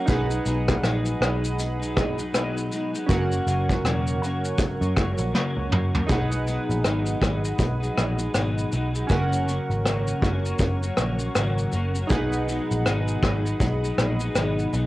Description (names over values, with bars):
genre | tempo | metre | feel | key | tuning
indie pop, bedroom pop | 80 BPM | 4/4 | swing 60% on 16ths | B major | A4 = 440 Hz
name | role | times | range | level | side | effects
chorused retro synth keys | accompaniment | 0.0-14.9 s | C#4 to F#5 | -31 LUFS | right 2 dB | cassette tape
clean electric guitar | accompaniment | 0.0-14.9 s | F#2 to D#4 | -29 LUFS | left 2 dB | ensemble chorus, vibrato effect, cassette tape
hollow soft pad | sustained chords | 0.0-14.9 s | G#4 to C#6 | -33 LUFS | right 1 dB | chorus, cassette tape
vintage muted picked electric bass | bass | 0.1-14.9 s | E1 to F#2 | -26 LUFS | equal | transformer saturation
soft brush drum kit | drums | 0.1-14.9 s | hi-hat, kick drum, rim click, shaker, snare drum, toms | -25 LUFS | equal | cassette tape
room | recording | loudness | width
light reverb | home recording on cassette | -22 LUFS | side -17 dB against mid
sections
0.0-6.1 A section; 6.1-14.9 B section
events
drum fill 5.3-6.1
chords
0.1 B6; 3.1 F#; 6.1 B6; 9.1 F#; 12.1 B6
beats
| 0.09 0.84 1.59 2.34 | 3.09 3.84 4.59 5.34 | 6.09 6.84 7.59 8.34 | 9.10 9.85 10.60 11.35 | 12.10 12.85 13.61 14.36